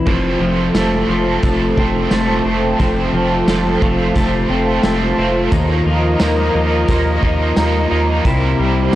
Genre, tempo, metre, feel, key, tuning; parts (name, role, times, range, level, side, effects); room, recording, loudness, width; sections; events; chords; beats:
dream pop; 88 BPM; 4/4; straight; F mixolydian; A4 = 440 Hz
warm analog pad; sustained chords; 0.0-9.0 s; F4 to Bb5; -20 LUFS; right 1 dB; chorus
twelve-string electric guitar; arpeggios; 0.0-9.0 s; F2 to E4; -18 LUFS; left 2 dB; lush chorus, tape echo
round analog bass; bass; 0.0-9.0 s; F1 to Eb2; -20 LUFS; equal
cranked stack guitar; accompaniment; 0.1-9.0 s; F2 to E4; -21 LUFS; right 4 dB; overdrive, harmonic tremolo, wide subtle chorus
raw garage drum kit; drums; 0.1-9.0 s; crash cymbal, hi-hat, kick drum, snare drum, tambourine; -21 LUFS; equal
light reverb, small room ambience; dry, gritty hardware recording, cassette tape; -13 LUFS; side -14 dB against mid
0.1-9.0 A section
0.1 F; 5.5 Ebsus2; 8.3 C7
| 0.07 0.75 1.43 2.12 | 2.80 3.48 4.16 4.84 | 5.52 6.21 6.89 7.57 | 8.25 8.93